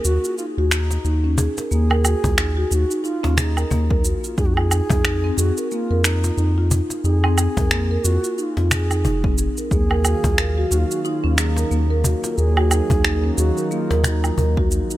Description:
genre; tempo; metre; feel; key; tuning
organic downtempo; 90 BPM; 4/4; swing 58% on 16ths; Eb minor; A4 = 438 Hz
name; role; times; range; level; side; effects
bass bansuri; melody; 0.0-14.7 s; Eb4 to Bb4; -27 LUFS; right 2 dB; ping-pong delay
marimba with soft mallets; arpeggios; 0.0-15.0 s; Bb3 to Bb4; -25 LUFS; equal; digital delay
round analog bass; bass; 0.0-14.8 s; F1 to F2; -19 LUFS; equal; tube saturation, sidechain pumping
electronic shaker, finger snaps and woodblock; drums; 0.0-15.0 s; none; -23 LUFS; right 2 dB; none
cajon; percussion; 0.1-14.5 s; none; -25 LUFS; left 2 dB; none
electronic kick drum; drums; 2.2-14.7 s; none; -22 LUFS; equal; overdrive
warm analog pad; sustained chords; 9.7-15.0 s; Eb3 to F5; -28 LUFS; left 1 dB; chorus, vintage 12-bit sampler grit, sidechain pumping
room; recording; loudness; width
small room ambience; none; -17 LUFS; side -15 dB against mid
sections
0.0-15.0 A section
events
none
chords
0.0 Eb5; 4.4 Fm7; 9.7 Ebm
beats
0.38 1.04 | 1.71 2.38 3.04 3.71 | 4.38 5.04 5.71 6.38 | 7.04 7.71 8.38 9.04 | 9.71 10.38 11.04 11.71 | 12.38 13.04 13.71 14.38

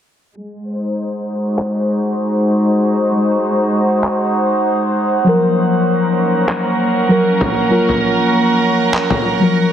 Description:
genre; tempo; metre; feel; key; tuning
organic downtempo; 98 BPM; 4/4; swing 56% on 16ths; Ab mixolydian; A4 = 442 Hz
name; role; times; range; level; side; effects
warm studio string section; sustained chords; 0.4-9.7 s; Ab3 to C5; -16 LUFS; equal; none
drifting glass-harmonics texture; texture; 1.5-9.7 s; Gb5; -23 LUFS; right 7 dB; chorus, built-in reverb
electronic handclaps; drums; 1.6-9.1 s; none; -22 LUFS; equal; none
muted felt-like synth keys; accompaniment; 5.2-9.7 s; F3 to Bb4; -15 LUFS; left 1 dB; chorus, ping-pong delay
frame drum; percussion; 7.4-9.2 s; none; -21 LUFS; left 2 dB; none
room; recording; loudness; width
wet lush hall reverb, RT60 1.9 s, studio reverb; heavily compressed radio sound, low-pass filter; -13 LUFS; side -9 dB against mid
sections
0.4-9.7 A section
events
filter sweep 0.4-9.7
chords
0.4 Ab7; 5.3 Gbmaj7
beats
| 0.37 0.98 1.59 2.20 | 2.81 3.43 4.04 4.65 | 5.26 5.88 6.49 7.10 | 7.71 8.33 8.94 9.55

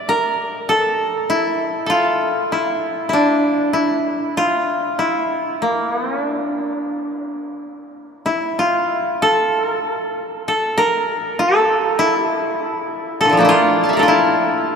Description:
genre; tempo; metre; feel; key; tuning
japanese traditional, Japanese chamber music; 46-50 BPM; 4/4; rubato; D hirajoshi; A4 = 439 Hz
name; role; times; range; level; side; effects
koto; solo; 0.0-14.8 s; Bb2 to A5; -16 LUFS; equal; none
room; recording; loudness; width
wet cathedral reverb, RT60 5.2 s; in a vast, echoing space; -16 LUFS; side -6 dB against mid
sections
0.0-8.2 A section; 8.2-14.8 B section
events
none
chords
none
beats
0.69 1.90 | 3.13 4.35 5.60 6.89 | 8.20 9.47 10.73 11.96 | 13.18 14.39

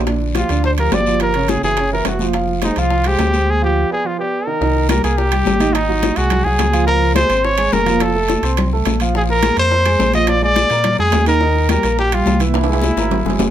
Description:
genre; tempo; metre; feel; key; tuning
Afro-Cuban jazz; 212 BPM; 4/4; straight; F minor; A4 = 440 Hz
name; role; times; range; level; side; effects
warm concert grand piano; accompaniment; 0.0-13.5 s; Db3 to C6; -21 LUFS; right 5 dB; none
sub bass with octave; bass; 0.0-13.5 s; F1 to Bb2; -19 LUFS; left 1 dB; none
bongos; percussion; 0.1-13.5 s; none; -25 LUFS; left 9 dB; none
congas; percussion; 0.1-13.5 s; none; -24 LUFS; equal; none
guiro; percussion; 0.1-13.5 s; none; -32 LUFS; left 7 dB; none
timbales; percussion; 0.1-13.5 s; none; -26 LUFS; right 9 dB; none
warm trumpet; melody; 0.4-13.5 s; Eb4 to Eb5; -17 LUFS; left 1 dB; none
room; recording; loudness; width
light reverb; none; -13 LUFS; side -11 dB against mid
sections
0.0-4.6 A section; 4.6-13.5 B section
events
drum fill 12.5-13.5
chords
0.1 Bb6; 1.2 Gm7b5; 1.8 Gb5; 2.3 Fmadd9; 3.5 Dm7b5; 4.0 G7; 4.6 Cm7; 5.7 Ab7; 6.9 Dbmaj7; 8.0 F; 9.1 Bbsus2; 10.3 Bb7; 11.4 Eb6; 12.5 Caug7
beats
| 0.07 0.35 0.64 0.92 | 1.21 1.49 1.77 2.06 | 2.34 2.62 2.91 3.19 | 3.48 3.76 4.04 4.33 | 4.61 4.90 5.18 5.46 | 5.75 6.03 6.31 6.60 | 6.88 7.16 7.45 7.73 | 8.01 8.29 8.58 8.86 | 9.14 9.43 9.71 9.99 | 10.28 10.56 10.85 11.13 | 11.41 11.70 11.98 12.26 | 12.54 12.83 13.11 13.39

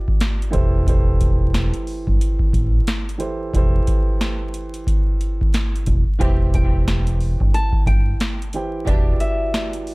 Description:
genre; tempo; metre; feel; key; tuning
hip hop, boom-bap hip-hop; 90 BPM; 4/4; swing 60% on 16ths; unclear; A4 = 441 Hz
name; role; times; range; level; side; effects
dark baby grand piano; accompaniment; 0.0-9.9 s; E3 to G5; -28 LUFS; right 3 dB; cassette tape, high-pass filter, low-pass filter
booming analog drum machine; drums; 0.1-9.9 s; hi-hat, kick drum, snare drum; -19 LUFS; equal; none
deep dub fingered electric bass; bass; 0.5-9.1 s; E1 to A1; -20 LUFS; equal; none
warm studio string section; stabs; 6.2-9.2 s; E3 to G4; -36 LUFS; left 1 dB; high-pass filter, low-pass filter, analog delay
nylon-string guitar; melody; 6.5-9.7 s; E5 to A5; -26 LUFS; left 1 dB; high-pass filter, low-pass filter
room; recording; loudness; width
little or no reverb; dry, gritty hardware recording, vinyl crackle; -17 LUFS; side -25 dB against mid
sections
0.0-9.9 A section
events
none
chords
0.0 Em7; 0.5 Am7/E; 6.2 C/E; 8.9 Em7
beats
0.20 | 0.87 1.54 2.20 2.87 | 3.54 4.20 4.87 5.54 | 6.20 6.87 7.54 8.20 | 8.87 9.54

